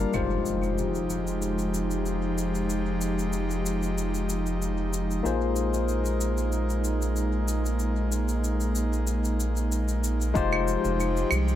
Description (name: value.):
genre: sunset chillout.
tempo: 94 BPM.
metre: 4/4.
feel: swing 53% on 16ths.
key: F minor.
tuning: A4 = 441 Hz.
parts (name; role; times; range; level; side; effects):
barky tine electric piano; accompaniment; 0.0-11.3 s; G3 to C5; -31 LUFS; moving between left 7 dB and right 8 dB; auto-pan, analog delay.
airy breathy pad; sustained chords; 0.0-11.6 s; F3 to Bb4; -30 LUFS; left 1 dB; chorus.
round analog bass; bass; 0.0-11.6 s; F1 to C2; -28 LUFS; equal; none.
cabasa and claves; drums; 0.1-11.6 s; none; -34 LUFS; equal; analog delay.
impact; sound effects; 0.1-2.7 s; none; -36 LUFS; equal; none.
electronic kick drum; drums; 10.4-10.5 s; none; -27 LUFS; equal; none.
room: light reverb, studio reverb.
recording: echo-heavy mix.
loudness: -24 LUFS.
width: side -12 dB against mid.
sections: 0.1-10.4 A section; 10.4-11.6 B section.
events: impact 0.1-2.7.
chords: 0.1 Fm9; 5.2 Bb9sus4; 10.4 Fm9.